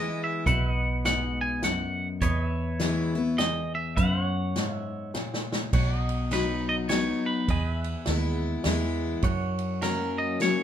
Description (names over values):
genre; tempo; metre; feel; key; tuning
honky-tonk and classic country; 103 BPM; 3/4; swing 61% on 8ths; B major; A4 = 439 Hz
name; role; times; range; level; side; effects
twangy electric guitar; melody; 0.0-10.6 s; A#4 to G#5; -30 LUFS; right 1 dB; none
picked steel-string acoustic guitar; accompaniment; 0.0-10.6 s; E2 to F#4; -29 LUFS; left 4 dB; none
pedal steel guitar; sustained chords; 0.0-10.6 s; B4 to G#5; -38 LUFS; right 3 dB; none
vintage muted fingered electric bass; bass; 0.0-10.6 s; B1 to F#2; -30 LUFS; right 1 dB; none
unplugged drum kit; drums; 0.5-10.6 s; crash cymbal, hi-hat, kick drum, ride cymbal, snare drum; -31 LUFS; right 1 dB; none
room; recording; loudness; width
moderate studio reverb, RT60 0.8 s; minimal, uncompressed stereo recording; -25 LUFS; side -10 dB against mid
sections
0.0-5.7 A section; 5.7-10.6 B section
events
drum fill 5.1-5.7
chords
0.5 B; 2.2 E; 4.0 F#; 5.7 B; 7.5 E; 9.2 F#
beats
| 0.47 1.05 1.64 | 2.22 2.81 3.39 | 3.98 4.56 5.14 | 5.73 6.31 6.90 | 7.48 8.07 8.65 | 9.24 9.82 10.41